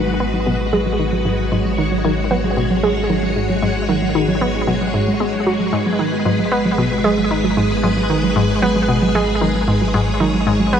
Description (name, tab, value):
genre	ambient, sequencer-driven space music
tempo	114 BPM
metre	4/4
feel	straight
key	G# minor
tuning	A4 = 441 Hz
part	string machine, full ensemble	sustained chords	0.0-10.8 s	G#3 to C#5	-19 LUFS	equal	ensemble chorus, shimmer reverb
part	analog pluck	riff	0.0-10.8 s	G#2 to B3	-20 LUFS	left 1 dB	chorus, tape echo, shimmer reverb
part	warm sub bass	bass	0.0-10.8 s	G#1	-25 LUFS	left 1 dB	none
part	warbly dusty pluck	arpeggios	0.1-10.8 s	F#3 to F#4	-22 LUFS	moving between right 1 dB and right 8 dB	chorus, auto-pan, tape echo, shimmer reverb
room	moderate plate reverb, RT60 2.8 s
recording	cassette tape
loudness	-15 LUFS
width	side -8 dB against mid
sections	0.0-10.8 A section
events	none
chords	0.0 G#m7